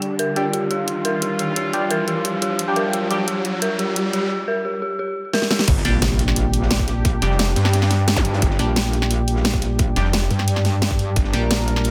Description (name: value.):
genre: dark technical drum and bass.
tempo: 175 BPM.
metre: 4/4.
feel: straight.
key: G minor.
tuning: A4 = 440 Hz.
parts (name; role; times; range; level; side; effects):
sweeping resonant pad; sustained chords; 0.0-11.9 s; G3 to Bb4; -29 LUFS; equal; chorus, sidechain pumping.
dubstep drum kit; drums; 0.0-11.9 s; crash cymbal, hi-hat, snare drum; -25 LUFS; equal; none.
riser, impact and zap; sound effects; 0.0-8.2 s; none; -28 LUFS; equal; none.
dark detuned synth bell; arpeggios; 0.2-5.6 s; G4 to Bb4; -26 LUFS; equal; chorus, sidechain pumping, digital delay.
band-passed chord stab; stabs; 0.4-3.2, 5.8-11.4 s; G3 to G4; -28 LUFS; equal; phaser, digital delay.
detuned saw bass; bass; 5.7-11.3 s; F1 to G2; -22 LUFS; equal; chorus, overdrive.
crunchy breakbeat drum kit; drums; 5.7-11.9 s; hi-hat, snare drum; -35 LUFS; equal; none.
electronic kick drum; drums; 5.7-11.2 s; none; -22 LUFS; equal; none.
metallic wobble bass; bass; 5.8-11.9 s; Bb1 to G2; -23 LUFS; equal; chorus.
room: light reverb.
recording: none.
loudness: -20 LUFS.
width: mono.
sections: 0.0-5.7 A section; 5.7-11.9 B section.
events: build-up 0.0-5.7; riser 0.0-4.3; drum fill 5.3-5.7; drop 5.7-11.9; impact 5.7-7.0.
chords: 0.0 G5; 5.7 Gm.